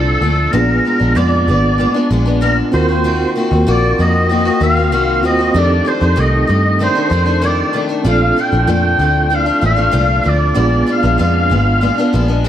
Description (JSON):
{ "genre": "indie pop", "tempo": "96 BPM", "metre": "4/4", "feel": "straight", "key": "Bb major", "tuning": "A4 = 437 Hz", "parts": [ { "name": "clear oboe", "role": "melody", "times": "0.0-12.2 s", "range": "A4 to G5", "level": "-17 LUFS", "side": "equal", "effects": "ensemble chorus, tape echo" }, { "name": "mellow reed electric piano", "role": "accompaniment", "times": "0.0-12.5 s", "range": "Cb4 to A5", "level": "-20 LUFS", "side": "right 4 dB", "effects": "fast tremolo, cassette tape" }, { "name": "picked steel-string acoustic guitar", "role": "accompaniment", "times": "0.0-12.5 s", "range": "F2 to Gb4", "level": "-17 LUFS", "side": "left 2 dB", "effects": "wide subtle chorus, vibrato effect" }, { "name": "vintage muted picked electric bass", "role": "bass", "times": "0.0-12.5 s", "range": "Ab1 to G2", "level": "-15 LUFS", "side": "equal", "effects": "none" } ], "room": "light reverb, studio reverb", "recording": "none", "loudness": "-11 LUFS", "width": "side -10 dB against mid", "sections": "0.0-12.5 A section", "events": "none", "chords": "0.0 Bbmaj7; 0.5 Bb7b9; 2.7 Ebm6; 5.6 F13; 8.1 Bbmaj7; 10.6 Bb7b9", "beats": "| 0.54 1.16 1.79 2.42 | 3.05 3.67 4.30 4.93 | 5.56 6.18 6.81 7.44 | 8.06 8.69 9.32 9.94 | 10.57 11.20 11.82 12.45" }